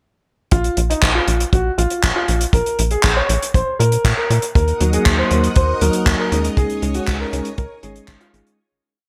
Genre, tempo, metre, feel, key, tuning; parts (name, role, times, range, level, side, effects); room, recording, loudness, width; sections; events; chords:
italo disco; 119 BPM; 4/4; straight; Bb minor; A4 = 441 Hz
warm concert grand piano; melody; 0.5-8.5 s; Eb4 to Db5; -24 LUFS; equal; vintage 12-bit sampler grit, digital delay
tight sequencer bass; bass; 0.5-8.4 s; Ab1 to Bb2; -21 LUFS; equal
damped 70s drum kit; drums; 0.5-8.6 s; handclaps, hi-hat; -24 LUFS; equal
kick drum; drums; 0.5-8.2 s; -18 LUFS; equal
string machine, full ensemble; sustained chords; 4.6-8.6 s; Bb4 to Eb6; -30 LUFS; equal; ensemble chorus
bell-like tine electric piano; stabs; 4.8-8.6 s; Gb3 to Db5; -25 LUFS; equal
light reverb; -17 LUFS; mono
0.5-8.6 verse
fade-out 5.9-8.6
0.5 Bb5; 4.6 Ebm; 6.6 Dbsus2